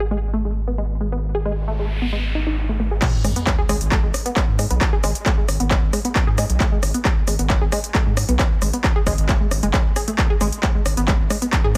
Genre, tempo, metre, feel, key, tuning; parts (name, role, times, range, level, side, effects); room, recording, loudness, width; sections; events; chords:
driving peak-time techno; 134 BPM; 4/4; straight; G# phrygian; A4 = 440 Hz
tight sequenced synth; riff; 0.0-11.8 s; G#3 to G#4; -28 LUFS; equal; chorus, sidechain pumping, digital delay
gritty driven synth bass; bass; 0.0-11.8 s; F#1 to G#2; -25 LUFS; equal; sidechain pumping
noise sweep and sub drop; sound effects; 1.6-4.8 s; -32 LUFS; equal
electronic kick drum; drums; 3.0-11.6 s; -22 LUFS; equal; overdrive
techno drum kit; drums; 3.0-11.8 s; crash cymbal, handclaps, hi-hat, rim click, shaker; -26 LUFS; equal; overdrive
light reverb; -20 LUFS; mono
0.0-3.0 A section; 3.0-11.8 B section
noise sweep 1.6-3.0; drop 3.0-11.8; impact 3.0-4.8